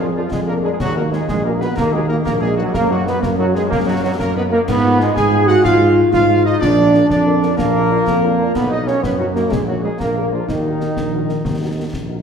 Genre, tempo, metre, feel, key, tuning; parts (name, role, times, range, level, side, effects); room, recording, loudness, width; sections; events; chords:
military-style march for wind band; 124 BPM (dotted quarters); 6/8; straight; Eb minor; A4 = 439 Hz
clear trumpet section; melody; 0.0-11.9 s; Eb4 to Ab5; -27 LUFS; left 1 dB
warm euphonium; second line; 0.0-11.9 s; Eb3 to Ab4; -20 LUFS; right 1 dB
mellow French horn section; accompaniment; 0.0-12.2 s; D4 to Bb4; -27 LUFS; left 6 dB
warm trombone section; sustained chords; 0.0-11.9 s; Eb3 to Ab4; -19 LUFS; right 1 dB
mellow tuba; bass; 0.0-12.2 s; Bb1 to Ab2; -20 LUFS; right 1 dB
concert snare drum, concert bass drum and clash cymbals; drums; 0.3-12.1 s; -26 LUFS; left 2 dB
wet concert hall reverb, RT60 2.1 s; recorded in a church or concert hall; -14 LUFS; side -7 dB against mid
0.0-12.2 A section
0.0 Bb7/F; 0.8 Ebm; 2.7 Ebm/Gb; 4.7 Fdim/Ab; 6.6 Bb; 8.5 B; 9.5 Ebm/Bb; 10.0 Bb7; 10.5 Ebm